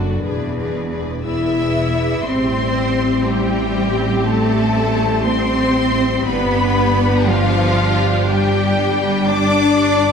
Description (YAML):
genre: cinematic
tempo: 60 BPM (dotted quarters)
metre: 6/8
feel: straight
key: A minor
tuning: A4 = 440 Hz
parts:
  - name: warm symphonic violin section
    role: melody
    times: 0.0-10.1 s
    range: D5 to E6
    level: -24 LUFS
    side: left 4 dB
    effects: none
  - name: warm symphonic violin section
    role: second line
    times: 0.0-10.1 s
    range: F4 to E5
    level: -24 LUFS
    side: left 1 dB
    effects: none
  - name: rich symphonic viola section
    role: accompaniment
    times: 0.0-10.1 s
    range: C4 to G#4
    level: -26 LUFS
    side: equal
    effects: none
  - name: dark French horn section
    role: sustained chords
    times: 0.0-10.1 s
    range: F3 to E4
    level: -21 LUFS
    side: left 4 dB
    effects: none
  - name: rich symphonic cello section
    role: bass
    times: 0.0-10.1 s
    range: E2 to E4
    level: -21 LUFS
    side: right 1 dB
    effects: none
  - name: warm chamber double bass section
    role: bass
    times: 0.0-10.1 s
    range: E1 to A1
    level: -21 LUFS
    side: right 2 dB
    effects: none
  - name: dark trombone section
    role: sustained chords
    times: 2.2-10.1 s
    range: G3 to E4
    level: -26 LUFS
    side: right 1 dB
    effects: none
room: wet scoring stage reverb, RT60 1.9 s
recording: heard from further back in the room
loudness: -15 LUFS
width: side -6 dB against mid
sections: 0.0-2.3 A section; 2.3-10.1 B section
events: none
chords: 0.2 E7; 2.3 Am7; 6.3 G